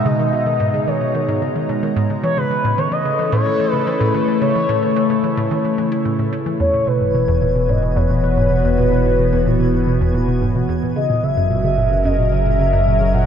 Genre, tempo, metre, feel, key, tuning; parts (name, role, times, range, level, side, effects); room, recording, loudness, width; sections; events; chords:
ambient, sequencer-driven space music; 110 BPM; 4/4; straight; A4 = 440 Hz
expressive synth lead; melody; 0.0-13.3 s; B4 to F#5; -20 LUFS; equal; wide subtle chorus, tape echo
phased analog pad; sustained chords; 0.0-13.3 s; B2 to A#5; -20 LUFS; left 1 dB; phaser, chorus
hollow square pluck; riff; 0.1-13.2 s; E2 to E4; -21 LUFS; equal; chorus, tape echo
round analog bass; bass; 6.6-13.3 s; E1 to F#1; -21 LUFS; equal
twinkling granular texture; texture; 6.7-13.3 s; G#5; -42 LUFS; equal; built-in reverb
wet huge ambient reverb, RT60 7.6 s; -15 LUFS; side -8 dB against mid
0.0-6.6 A section; 6.6-13.3 B section
0.0 G#madd9; 2.2 A; 6.6 Esus2; 11.0 F#add9